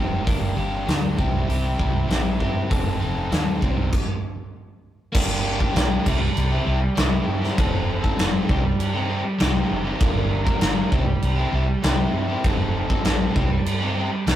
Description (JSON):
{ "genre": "indie rock", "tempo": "99 BPM", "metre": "4/4", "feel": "straight", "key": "unclear", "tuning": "A4 = 437 Hz", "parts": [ { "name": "crunchy overdriven guitar", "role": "riff", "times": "0.0-14.4 s", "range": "G3 to Bb4", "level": "-26 LUFS", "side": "equal", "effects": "none" }, { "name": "woody fretless electric bass", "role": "bass", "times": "0.0-14.4 s", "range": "F1 to G2", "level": "-25 LUFS", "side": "equal", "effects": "none" }, { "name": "big rock drum kit", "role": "drums", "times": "0.3-14.4 s", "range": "crash cymbal, hi-hat, kick drum, snare drum", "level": "-22 LUFS", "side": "equal", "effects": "none" } ], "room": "moderate studio reverb, RT60 0.6 s", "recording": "rough rehearsal-room recording, tube saturation", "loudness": "-19 LUFS", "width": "side -12 dB against mid", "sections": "0.0-5.1 A section; 5.1-14.4 B section", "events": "stop 3.9-5.1", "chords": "0.3 Gm; 1.2 C; 2.7 F7; 3.6 Cm; 4.5 N.C.; 5.1 Gm; 6.1 C; 7.6 F7; 8.5 Cm; 10.0 Gm; 10.9 C; 12.4 F7; 13.4 Cm", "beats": "| 0.27 0.88 1.49 2.10 | 2.71 3.32 3.93 4.54 | 5.15 5.76 6.36 6.97 | 7.58 8.19 8.80 9.40 | 10.01 10.62 11.23 11.84 | 12.44 13.05 13.66 14.27" }